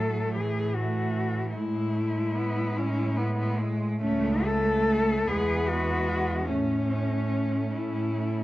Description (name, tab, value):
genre	classical, lyrical piece for cello ensemble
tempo	45-51 BPM (dotted quarters)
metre	6/8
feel	rubato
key	A major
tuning	A4 = 440 Hz
part	rich cello	melody	0.0-8.4 s	C#4 to A4	-29 LUFS	left 3 dB	none
part	clear cello	second line	0.0-8.4 s	G#3 to A3	-34 LUFS	right 5 dB	none
part	rich cello	accompaniment	0.0-8.3 s	E3 to C#4	-32 LUFS	equal	none
part	rich cello	bass	0.0-8.4 s	C#2 to A2	-29 LUFS	right 1 dB	none
room	light reverb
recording	worn, warbling old tape, cassette tape, warbly pitch drift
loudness	-24 LUFS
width	side -16 dB against mid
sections	0.0-8.4 A section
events	none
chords	0.0 A5; 1.6 E/A; 4.0 A/C#; 5.3 Eadd9; 6.5 A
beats	0.36 | 1.55 2.76 | 4.01 5.27 | 6.48 7.74